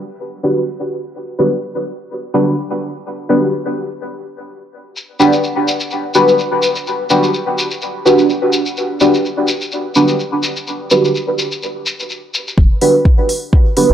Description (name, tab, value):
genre	dub techno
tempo	126 BPM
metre	4/4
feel	swing 56% on 16ths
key	unclear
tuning	A4 = 440 Hz
part	deep mellow chord stab	stabs	0.4-13.9 s	D4 to B4	-14 LUFS	equal	chorus, phaser, sidechain pumping, dub echo
part	shekere	percussion	5.0-12.6 s	none	-21 LUFS	left 2 dB	none
part	warm sub bass	bass	12.6-13.9 s	E1	-16 LUFS	equal	tube saturation, sidechain pumping
part	electronic kick drum	drums	12.6-13.6 s	none	-10 LUFS	equal	none
part	electronic hi-hat	drums	12.8-13.9 s	none	-22 LUFS	equal	none
room	light reverb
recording	dry, gritty hardware recording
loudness	-13 LUFS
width	side -10 dB against mid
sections	0.0-12.6 A section; 12.6-13.9 B section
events	none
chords	0.0 Dadd11; 12.6 Em7 (rootless)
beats	0.20 0.67 | 1.15 1.62 2.10 2.58 | 3.05 3.53 4.00 4.48 | 4.96 5.43 5.91 6.39 | 6.86 7.34 7.82 8.29 | 8.77 9.24 9.72 10.20 | 10.67 11.15 11.62 12.10 | 12.58 13.05 13.53